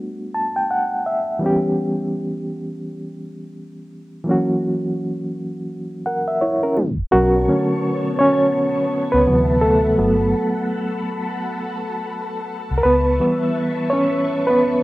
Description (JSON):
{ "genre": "lo-fi hip hop", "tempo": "84 BPM", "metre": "4/4", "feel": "swing 61% on 16ths", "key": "B minor", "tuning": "A4 = 441 Hz", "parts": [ { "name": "reed electric piano", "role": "accompaniment", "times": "0.0-14.8 s", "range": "C3 to A5", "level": "-18 LUFS", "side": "equal", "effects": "fast tremolo, low-pass filter" }, { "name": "string machine, cellos", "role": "sustained chords", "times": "7.1-14.8 s", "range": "B3 to C#6", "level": "-27 LUFS", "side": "left 2 dB", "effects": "phaser, ensemble chorus, low-pass filter" }, { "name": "vintage muted fingered electric bass", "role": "bass", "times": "7.1-13.2 s", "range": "G1 to D2", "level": "-21 LUFS", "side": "left 1 dB", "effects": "none" } ], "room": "light reverb, digital ambience", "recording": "rough home demo mix, cassette tape, tape stop", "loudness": "-17 LUFS", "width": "side -18 dB against mid", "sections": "0.0-7.1 A section; 7.1-14.8 B section", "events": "reed electric piano fill 0.0-1.4; tape stop 6.8-7.1; reed electric piano solo 7.1-14.8", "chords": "0.0 Gmaj9; 1.4 C#m7b5; 4.3 F#7; 7.1 Bm9; 9.3 D13; 10.0 Gmaj9 (rootless); 12.8 C#m7b5" }